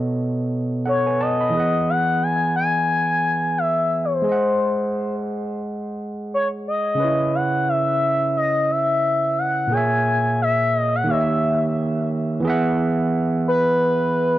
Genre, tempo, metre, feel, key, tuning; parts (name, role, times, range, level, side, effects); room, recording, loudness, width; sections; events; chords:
R&B; 88 BPM; 4/4; swing 59% on 16ths; E major; A4 = 440 Hz
overdriven tine electric piano; accompaniment; 0.0-14.4 s; A#2 to B5; -22 LUFS; right 2 dB
expressive portamento lead; melody; 0.9-14.4 s; B4 to G#5; -20 LUFS; left 2 dB; chorus, tape echo
digital ambience; dry, close 1970s-style studio recording; -18 LUFS; side -14 dB against mid
0.0-1.5 A section; 1.5-12.4 B section; 12.4-14.4 A section
0.0 B9; 1.5 Eadd9; 4.3 G#7; 7.0 C#m7; 9.7 A#m7b5; 11.1 D#7b9; 12.4 Eadd9